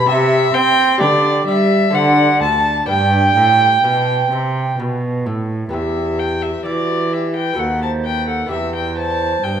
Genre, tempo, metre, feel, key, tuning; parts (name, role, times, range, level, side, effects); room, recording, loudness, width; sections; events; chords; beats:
classical, baroque-style sonata movement with continuo; 65 BPM; 3/4; straight; G major, E minor from 5.7 s; A4 = 440 Hz
dark violin; melody; 0.0-9.6 s; D5 to A5; -18 LUFS; left 4 dB
mellow hollow baroque flute; second line; 0.0-9.6 s; F#4 to B5; -20 LUFS; right 7 dB
lute; accompaniment; 0.0-9.6 s; D2 to C5; -23 LUFS; left 1 dB
warm cello; bass; 0.0-9.6 s; D2 to C4; -19 LUFS; right 1 dB
wet recital hall reverb, RT60 1.5 s; -14 LUFS; side -8 dB against mid
0.0-5.7 A section; 5.7-9.6 A section
0.1 C; 1.0 G/D; 1.9 D7; 2.9 G; 5.7 Em; 7.6 B7/D#; 8.5 Em
| 0.09 1.01 1.94 | 2.89 3.85 4.79 | 5.74 6.66 7.58 | 8.51 9.44